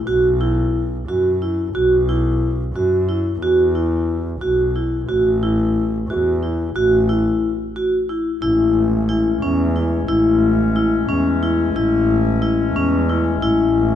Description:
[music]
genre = contemporary instrumental, chamber music in an uneven meter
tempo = 180 BPM (eighths)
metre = 5/8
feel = straight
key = A major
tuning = A4 = 440 Hz
[part]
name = vibraphone with medium hard mallets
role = arpeggios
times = 0.1-13.8 s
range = C#4 to F#4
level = -18 LUFS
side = left 1 dB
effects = none
[part]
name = rich double bass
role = bass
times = 0.1-14.0 s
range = A1 to F#2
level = -20 LUFS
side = right 1 dB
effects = none
[part]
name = mellow woodwind section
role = sustained chords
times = 8.4-14.0 s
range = G#3 to C#4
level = -24 LUFS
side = left 5 dB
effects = none
[sound]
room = light reverb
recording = nothing above 11.0 kHz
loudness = -16 LUFS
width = side -10 dB against mid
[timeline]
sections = 0.0-8.4 A section; 8.4-14.0 B section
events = break 7.6-8.4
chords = 0.1 Bsus4; 5.1 A5; 8.4 Amaj7

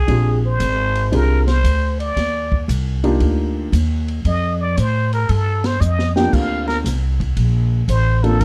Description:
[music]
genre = jazz, small-group swing and bop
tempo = 115 BPM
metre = 4/4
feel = swing 68% on 8ths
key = unclear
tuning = A4 = 440 Hz
[part]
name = trumpet with plunger mute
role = melody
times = 0.0-8.4 s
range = Ab4 to G5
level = -24 LUFS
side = equal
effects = none
[part]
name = upright bass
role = bass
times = 0.0-8.4 s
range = G1 to A2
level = -20 LUFS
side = equal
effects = none
[part]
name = dark baby grand piano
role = accompaniment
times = 0.1-8.4 s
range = Bb3 to A4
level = -23 LUFS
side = equal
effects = none
[part]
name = open jazz drum kit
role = drums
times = 0.1-8.4 s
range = crash cymbal, hi-hat, kick drum, ride cymbal, snare drum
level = -29 LUFS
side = equal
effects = none
[sound]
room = little or no reverb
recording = dark, warm production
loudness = -18 LUFS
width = mono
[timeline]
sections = 0.0-8.4 A section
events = muted trumpet solo 0.0-8.4; drum fill 5.8-6.3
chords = 0.1 Bb13; 2.2 Ebmaj7; 4.2 Fadd9; 6.3 Bb6

